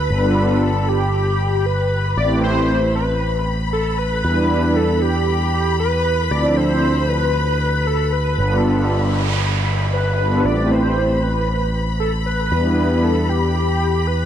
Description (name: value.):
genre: nu-disco.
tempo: 116 BPM.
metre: 4/4.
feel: straight.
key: A minor.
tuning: A4 = 440 Hz.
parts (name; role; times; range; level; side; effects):
wide unison lead; melody; 0.0-14.3 s; G4 to D5; -21 LUFS; equal; analog chorus, dub echo.
rich symphonic string section; sustained chords; 0.0-14.3 s; B5; -28 LUFS; left 4 dB; none.
picked electric bass with an envelope filter; bass; 0.0-14.3 s; G1 to E2; -20 LUFS; equal; none.
warm analog pad; accompaniment; 0.1-13.1 s; F3 to B4; -22 LUFS; equal; chorus, dub echo.
noise sweep; sound effects; 8.7-10.5 s; none; -26 LUFS; right 2 dB; none.
room: light reverb.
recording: echo-heavy mix.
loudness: -16 LUFS.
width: side -10 dB against mid.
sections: 0.0-14.3 A section.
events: noise sweep 8.7-10.5.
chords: 0.1 G7; 2.2 Am7; 4.2 Em7; 6.3 Dm7; 8.4 G7; 10.5 Am7; 12.5 Em7.